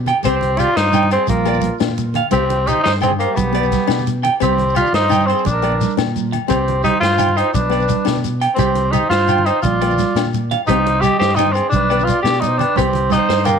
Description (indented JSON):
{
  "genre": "highlife guitar band",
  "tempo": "115 BPM (dotted quarters)",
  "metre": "12/8",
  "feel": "straight",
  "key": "C minor",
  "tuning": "A4 = 441 Hz",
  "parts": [
    { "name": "fingered electric bass", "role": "bass", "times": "0.0-13.6 s", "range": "Bb1 to B2", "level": "-21 LUFS", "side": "equal", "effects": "none" },
    { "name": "clean electric guitar", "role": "arpeggios", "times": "0.1-13.6 s", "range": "G4 to G5", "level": "-23 LUFS", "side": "right 11 dB", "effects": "none" },
    { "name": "vintage drum kit", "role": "drums", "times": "0.1-13.5 s", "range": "hi-hat, kick drum, snare drum", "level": "-27 LUFS", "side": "left 4 dB", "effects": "none" },
    { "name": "agogo bells", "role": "percussion", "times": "0.1-13.6 s", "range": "none", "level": "-27 LUFS", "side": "left 15 dB", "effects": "none" },
    { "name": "congas", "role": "percussion", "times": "0.1-13.6 s", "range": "none", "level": "-24 LUFS", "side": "right 14 dB", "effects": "none" },
    { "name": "breathy trumpet", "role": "second line", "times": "0.2-13.6 s", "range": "F4 to Eb5", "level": "-25 LUFS", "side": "right 12 dB", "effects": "tape echo" },
    { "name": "nylon-string guitar", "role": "accompaniment", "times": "0.2-13.6 s", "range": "Bb3 to Eb4", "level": "-24 LUFS", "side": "left 14 dB", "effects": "none" },
    { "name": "shekere", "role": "percussion", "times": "0.2-13.5 s", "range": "none", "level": "-26 LUFS", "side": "left 7 dB", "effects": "none" },
    { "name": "breathy tenor saxophone", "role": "melody", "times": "0.3-13.6 s", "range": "Bb3 to G4", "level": "-18 LUFS", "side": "left 2 dB", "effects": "none" }
  ],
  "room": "light reverb, small room ambience",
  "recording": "1960s-style stereo with parts hard left and right",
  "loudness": "-14 LUFS",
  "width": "side -6 dB against mid",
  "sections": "0.0-13.6 A section",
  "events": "none",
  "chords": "0.3 Cm; 1.3 Bb; 2.3 Cm; 3.4 G/B; 4.4 Cm; 5.5 Bb; 6.5 Cm; 7.6 G/B (rootless); 8.6 Cm; 9.6 Bb; 10.7 Cm; 11.7 Bm; 12.8 Cm",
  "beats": "| 0.25 0.77 1.29 1.81 | 2.33 2.86 3.38 3.90 | 4.42 4.94 5.46 5.99 | 6.51 7.03 7.55 8.07 | 8.60 9.12 9.64 10.16 | 10.68 11.20 11.73 12.25 | 12.77 13.29"
}